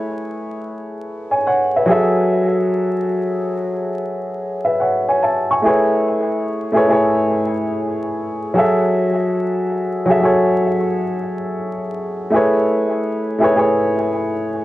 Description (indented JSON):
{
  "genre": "hip hop",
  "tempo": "72 BPM",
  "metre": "4/4",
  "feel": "swing 65% on 16ths",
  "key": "A major",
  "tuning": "A4 = 438 Hz",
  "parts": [
    { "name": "dark upright piano", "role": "solo", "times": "0.0-14.6 s", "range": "F#3 to C#6", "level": "-16 LUFS", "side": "equal", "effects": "cassette tape, low-pass filter, analog delay" }
  ],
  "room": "moderate small room reverb, RT60 0.5 s",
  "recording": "worn, warbling old tape, cassette tape, vinyl crackle, warbly pitch drift",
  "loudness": "-15 LUFS",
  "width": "side -16 dB against mid",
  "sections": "0.0-14.6 A section",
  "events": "none",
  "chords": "0.0 Amaj7; 1.9 F#m7; 5.6 Amaj7; 8.5 F#m7; 12.3 Amaj7"
}